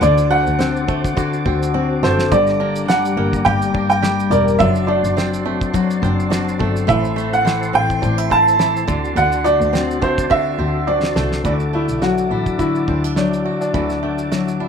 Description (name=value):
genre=acoustic pop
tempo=105 BPM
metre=4/4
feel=swing 55% on 16ths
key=D mixolydian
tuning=A4 = 440 Hz
part: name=clear upright piano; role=melody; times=0.0-14.7 s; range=D4 to A5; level=-18 LUFS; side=right 2 dB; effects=none
part: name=fingerpicked steel-string acoustic guitar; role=accompaniment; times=0.0-14.7 s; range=G2 to Bb4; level=-20 LUFS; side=left 5 dB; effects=none
part: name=tonewheel organ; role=sustained chords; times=0.0-14.7 s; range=E4 to D6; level=-28 LUFS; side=right 1 dB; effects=chorus vibrato, slow rotary speaker
part: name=bluegrass banjo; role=arpeggios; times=0.0-14.7 s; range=D3 to G4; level=-27 LUFS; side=right 8 dB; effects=none
part: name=dark double bass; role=bass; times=0.0-14.7 s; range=E1 to D2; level=-23 LUFS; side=right 1 dB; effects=none
part: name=cloth-damped thuddy drum kit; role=drums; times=0.0-14.6 s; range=kick drum, shaker, snare drum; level=-24 LUFS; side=right 1 dB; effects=none
room=moderate studio reverb, RT60 0.6 s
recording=none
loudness=-15 LUFS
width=side -6 dB against mid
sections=0.0-11.5 A section; 11.5-14.7 B section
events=drum fill 1.7-2.3, 10.3-11.5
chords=0.0 D7; 2.3 Gm; 4.6 D7/F#; 6.9 Am; 8.9 D7; 11.5 Dadd9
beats=| 0.02 0.60 1.17 1.74 | 2.31 2.88 3.46 4.03 | 4.60 5.17 5.74 6.31 | 6.88 7.46 8.03 8.60 | 9.17 9.74 10.31 10.88 | 11.45 12.02 12.60 13.17 | 13.74 14.31